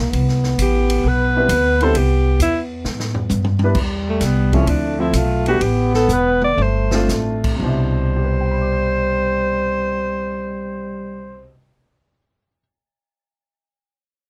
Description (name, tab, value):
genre	jazz, small-group swing and bop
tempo	113-133 BPM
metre	4/4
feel	swing 68% on 8ths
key	C major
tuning	A4 = 441 Hz
part	breathy trombone	second line	0.0-11.5 s	G3 to B3	-26 LUFS	equal	none
part	upright bass	bass	0.0-11.4 s	E1 to A2	-22 LUFS	equal	none
part	swinging big-band drum kit	drums	0.1-7.5 s	crash cymbal, hi-hat, kick drum, ride cymbal, snare drum, toms	-28 LUFS	equal	none
part	breathy alto saxophone	melody	0.6-11.5 s	A3 to D5	-23 LUFS	equal	none
part	clear upright piano	accompaniment	1.4-12.6 s	B2 to G6	-26 LUFS	equal	none
room	little or no reverb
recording	close, detailed microphones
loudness	-18 LUFS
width	mono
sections	0.0-3.8 A section; 3.8-7.6 B section; 7.6-11.9 C section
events	drum fill 2.9-3.8, 6.1-7.1; slowing down 3.8-7.6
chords	0.1 Cmaj7; 3.8 Em; 4.7 Dm9; 5.6 A5; 6.6 G9sus4; 7.6 Cmaj7